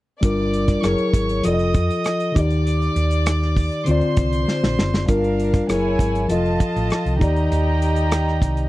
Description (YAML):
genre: lush 1970s-style soul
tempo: 99 BPM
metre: 4/4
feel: straight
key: G minor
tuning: A4 = 440 Hz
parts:
  - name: warm studio violin section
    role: second line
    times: 0.2-8.7 s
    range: D4 to Eb6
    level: -26 LUFS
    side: right 2 dB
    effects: none
  - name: mellow tine electric piano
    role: accompaniment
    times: 0.2-8.7 s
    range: D3 to Eb5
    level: -21 LUFS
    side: left 1 dB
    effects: none
  - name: hollow-body short-scale fingered electric bass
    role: bass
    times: 0.2-8.7 s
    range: F1 to F2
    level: -22 LUFS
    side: equal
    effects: none
  - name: warm soul drum kit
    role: drums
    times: 0.2-8.7 s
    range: hi-hat, kick drum, rim click, snare drum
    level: -20 LUFS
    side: equal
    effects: none
room: little or no reverb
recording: dry, close 1970s-style studio recording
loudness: -17 LUFS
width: side -17 dB against mid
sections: 0.2-5.1 A section; 5.1-8.7 B section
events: drum fill 4.5-5.1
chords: 0.2 Gm7; 0.8 F#9; 1.4 F7; 2.4 Ebmaj7; 3.9 Dm7; 5.1 Gm7; 5.7 F#9; 6.3 F7; 7.2 Ebmaj7